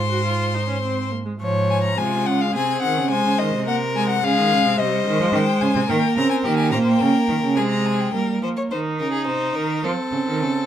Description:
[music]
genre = classical, baroque-style fugue for string quartet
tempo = 106 BPM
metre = 3/4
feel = straight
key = unclear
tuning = A4 = 440 Hz
[part]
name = warm violin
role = melody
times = 0.0-8.1 s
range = Eb5 to C6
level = -23 LUFS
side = left 8 dB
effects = none
[part]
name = clear violin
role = second line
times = 0.0-10.7 s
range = F4 to Db5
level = -26 LUFS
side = left 3 dB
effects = none
[part]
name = clear cello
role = bass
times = 0.0-10.7 s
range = Ab2 to G3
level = -23 LUFS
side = right 4 dB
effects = none
[part]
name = rich viola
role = accompaniment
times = 0.1-10.7 s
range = F3 to Gb4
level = -23 LUFS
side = right 2 dB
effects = none
[sound]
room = light reverb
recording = close, detailed microphones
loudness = -18 LUFS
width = side -10 dB against mid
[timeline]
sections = 0.0-1.4 A section; 1.4-8.1 B section; 8.1-10.7 A section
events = none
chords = 0.0 Ab; 1.4 Db/Ab; 2.5 Ab/C; 4.2 Db; 4.8 Ab/C; 5.9 Eb (rootless); 6.5 Eb7; 7.6 Ab/C; 8.1 Eb7; 9.3 Cm7; 9.8 F7 (rootless)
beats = 0.25 0.83 | 1.41 1.98 2.55 | 3.11 3.67 4.24 | 4.79 5.34 5.89 | 6.45 7.01 7.58 | 8.15 8.72 9.28 | 9.84 10.41

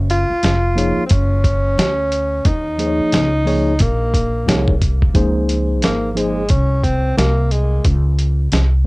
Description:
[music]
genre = hip hop, jazz-hop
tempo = 89 BPM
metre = 4/4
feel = swing 60% on 16ths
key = unclear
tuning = A4 = 439 Hz
[part]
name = upright bass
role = bass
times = 0.0-8.9 s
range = F1 to Eb2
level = -17 LUFS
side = equal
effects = none
[part]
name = breathy tenor saxophone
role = melody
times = 0.1-7.8 s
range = Ab3 to F4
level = -20 LUFS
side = equal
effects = cassette tape, tape echo
[part]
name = dusty soul sampler-style drum kit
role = drums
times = 0.1-8.7 s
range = hi-hat, kick drum, snare drum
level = -17 LUFS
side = equal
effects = overdrive, cassette tape
[part]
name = mellow tine electric piano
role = accompaniment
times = 0.8-6.4 s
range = F3 to Db5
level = -19 LUFS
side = equal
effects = medium stereo tremolo, cassette tape
[sound]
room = little or no reverb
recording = home recording on cassette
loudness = -14 LUFS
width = side -24 dB against mid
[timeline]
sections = 0.0-5.2 A section; 5.2-8.9 B section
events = tenor saxophone solo 5.2-8.9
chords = 0.0 Gbmaj7(no3); 2.5 Eb5; 3.8 Bbm9; 5.2 Db69; 7.8 Bbmadd9 (rootless)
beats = 0.43 1.11 1.78 | 2.45 3.13 3.80 4.48 | 5.15 5.83 6.50 7.17 | 7.85 8.52

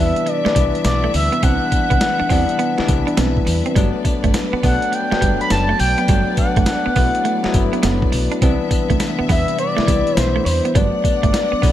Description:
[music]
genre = R&B, new jack swing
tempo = 103 BPM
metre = 4/4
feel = swing 65% on 16ths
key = G major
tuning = A4 = 440 Hz
[part]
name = expressive synth lead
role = melody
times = 0.0-11.7 s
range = C5 to B5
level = -20 LUFS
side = left 1 dB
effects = chorus
[part]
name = bell-like tine electric piano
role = accompaniment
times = 0.0-11.7 s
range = E3 to E4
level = -22 LUFS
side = left 4 dB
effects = analog chorus
[part]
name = warm studio string section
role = sustained chords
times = 0.0-11.7 s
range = C3 to F#5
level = -28 LUFS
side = left 2 dB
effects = none
[part]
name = clean electric guitar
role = riff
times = 0.0-11.7 s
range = G3 to D4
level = -25 LUFS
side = right 6 dB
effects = wide subtle chorus
[part]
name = deep dub fingered electric bass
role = bass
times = 0.0-11.7 s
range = F#1 to E2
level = -21 LUFS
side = equal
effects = none
[part]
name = boom bap sampler-style drum kit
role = drums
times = 0.2-11.7 s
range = hi-hat, kick drum, snare drum, tambourine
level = -19 LUFS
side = equal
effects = none
[sound]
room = light reverb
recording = bright 1980s-style digital production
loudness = -15 LUFS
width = side -12 dB against mid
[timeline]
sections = 0.0-11.7 A section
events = none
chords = 0.0 Cmaj7; 3.8 Gmaj7; 8.4 Cmaj7; 10.8 Gmaj7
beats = 0.27 0.85 | 1.43 2.02 2.60 3.18 | 3.76 4.34 4.93 5.51 | 6.09 6.67 7.26 7.84 | 8.42 9.01 9.59 10.17 | 10.75 11.34

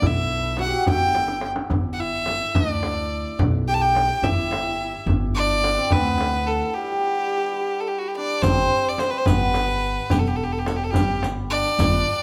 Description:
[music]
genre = Persian modal ensemble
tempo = 72 BPM (dotted quarters)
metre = 6/8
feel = straight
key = G dastgah mahur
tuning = A4 = 444 Hz
[part]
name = clear violin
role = melody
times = 0.0-12.2 s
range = F#4 to A5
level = -26 LUFS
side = equal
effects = none
[part]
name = santur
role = second line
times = 0.0-12.2 s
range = G3 to G4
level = -30 LUFS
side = equal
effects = none
[part]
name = upright bass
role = bass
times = 0.0-12.0 s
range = E1 to D2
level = -29 LUFS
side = equal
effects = none
[part]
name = frame drum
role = percussion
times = 0.0-11.9 s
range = none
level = -29 LUFS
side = equal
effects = none
[part]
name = tombak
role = percussion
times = 0.0-11.9 s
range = none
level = -29 LUFS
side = equal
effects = none
[part]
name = riq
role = percussion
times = 8.4-12.0 s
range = none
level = -35 LUFS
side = equal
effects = none
[sound]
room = moderate large studio reverb, RT60 1.2 s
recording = band playing live in one room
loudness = -22 LUFS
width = mono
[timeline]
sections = 0.0-8.4 A section; 8.4-12.2 B section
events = drum fill 1.2-1.7; break 6.7-8.4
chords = none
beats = | 0.04 0.88 | 1.71 2.55 | 3.39 4.23 | 5.07 5.91 | 6.75 7.59 | 8.43 9.27 | 10.11 10.94 | 11.78

